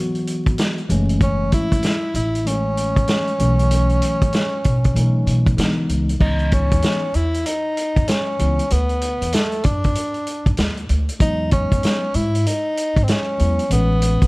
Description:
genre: hip hop, jazz-hop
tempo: 96 BPM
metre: 4/4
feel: swing 62% on 16ths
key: C# minor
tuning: A4 = 440 Hz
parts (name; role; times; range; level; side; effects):
- mellow tine electric piano; accompaniment; 0.0-14.3 s; E3 to F#4; -23 LUFS; left 1 dB; none
- vintage drum kit; drums; 0.1-14.3 s; crash cymbal, hi-hat, kick drum, snare drum; -20 LUFS; equal; none
- upright bass; bass; 0.9-14.3 s; F#1 to C#3; -20 LUFS; equal; none
- breathy tenor saxophone; melody; 1.2-14.3 s; A3 to E4; -22 LUFS; equal; slapback echo
room: small room ambience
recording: vinyl crackle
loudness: -16 LUFS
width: side -24 dB against mid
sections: 0.0-6.2 A section; 6.2-14.3 B section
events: none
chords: 0.0 C#m11 (rootless); 0.9 F#m7; 3.4 B7sus4; 5.6 C#m9; 8.7 D6; 10.6 N.C.; 11.2 Emaj9; 13.7 Amaj9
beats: 0.58 | 1.21 1.83 2.46 3.08 | 3.71 4.33 4.96 5.58 | 6.21 6.83 7.46 8.08 | 8.71 9.33 9.96 10.58 | 11.21 11.83 12.46 13.08 | 13.71

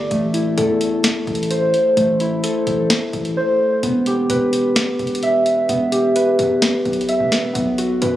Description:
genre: hip hop, trap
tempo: 129 BPM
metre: 4/4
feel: half-time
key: E minor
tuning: A4 = 440 Hz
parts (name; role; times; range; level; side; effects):
- muted felt-like synth keys; arpeggios; 0.0-8.2 s; A3 to E5; -16 LUFS; equal; chorus, tape echo
- distorted 808-style bass; bass; 0.0-8.2 s; E1 to F#2; -27 LUFS; left 1 dB; distortion
- trap drum kit; drums; 0.1-8.1 s; hi-hat, snare drum; -22 LUFS; left 1 dB; none
room: light reverb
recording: recorded on a phone in the room, club reverb, compression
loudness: -15 LUFS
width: side -13 dB against mid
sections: 0.0-3.8 A section; 3.8-8.2 B section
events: silent gap 3.4-3.8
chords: 0.1 Am; 3.8 Em; 7.6 B5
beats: | 0.11 0.57 1.04 1.50 | 1.97 2.44 2.90 3.37 | 3.83 4.30 4.76 5.23 | 5.69 6.16 6.62 7.09 | 7.55 8.02

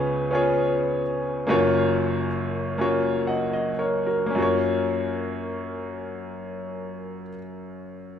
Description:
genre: gospel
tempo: 35-54 BPM (dotted quarters)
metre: 6/8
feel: straight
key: F# major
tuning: A4 = 441 Hz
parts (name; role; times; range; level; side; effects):
- bright baby grand piano; accompaniment; 0.0-8.2 s; F#1 to F#5; -23 LUFS; left 1 dB; none
room: moderate large studio reverb, RT60 1.3 s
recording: band playing live in one room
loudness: -22 LUFS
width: side -8 dB against mid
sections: 0.0-4.4 A section; 4.4-8.2 B section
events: slowing down 0.0-4.4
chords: 0.0 C#7; 1.5 F#maj7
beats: 0.32 | 1.49 2.80 | 4.36 6.08 | 7.80

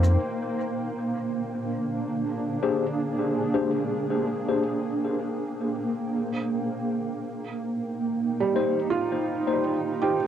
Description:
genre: ambient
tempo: 81 BPM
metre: 4/4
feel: straight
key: unclear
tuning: A4 = 440 Hz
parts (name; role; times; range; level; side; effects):
- granular cloud pad; sustained chords; 0.0-10.3 s; Bb3 to G5; -27 LUFS; right 2 dB; built-in reverb, cassette tape
- mellow tine electric piano; stabs; 0.0-9.6 s; Bb3 to C5; -29 LUFS; left 6 dB; medium stereo tremolo, cassette tape, dub echo
- felt-muted upright piano; arpeggios; 8.4-10.3 s; G3 to G4; -26 LUFS; right 6 dB; cassette tape, analog delay
room: moderate booth ambience, RT60 0.2 s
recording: home recording on cassette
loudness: -25 LUFS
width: side -9 dB against mid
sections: 0.2-10.3 A section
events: none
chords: 0.2 Bb13; 6.1 Cm7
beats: | 0.21 0.95 1.69 2.44 | 3.18 3.92 4.66 5.40 | 6.14 6.88 7.62 8.36 | 9.10 9.84

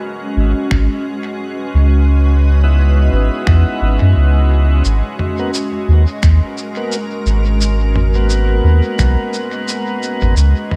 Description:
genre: ambient dub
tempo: 87 BPM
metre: 4/4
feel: swing 57% on 16ths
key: G# minor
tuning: A4 = 443 Hz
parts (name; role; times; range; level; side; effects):
- soft additive organ-like pad; sustained chords; 0.0-10.8 s; G#3 to B4; -24 LUFS; equal; ensemble chorus, built-in reverb
- soft dub sub bass; bass; 0.4-10.5 s; G#1 to F#2; -13 LUFS; equal; none
- electronic kick drum; drums; 0.7-9.1 s; none; -20 LUFS; equal; none
- lo-fi sampler-style drum kit; drums; 0.7-10.8 s; finger snaps, shaker, toms; -28 LUFS; equal; dub echo
- tonewheel organ; stabs; 2.6-10.4 s; A#3 to F#4; -26 LUFS; equal; slow rotary speaker, low-pass filter, dub echo
room: light reverb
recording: echo-heavy mix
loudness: -15 LUFS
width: mono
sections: 0.0-10.8 A section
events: none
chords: 0.0 C#m11; 4.8 G#m9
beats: 0.02 0.71 1.40 | 2.09 2.78 3.47 4.16 | 4.85 5.54 6.23 6.92 | 7.61 8.30 8.99 9.68 | 10.37

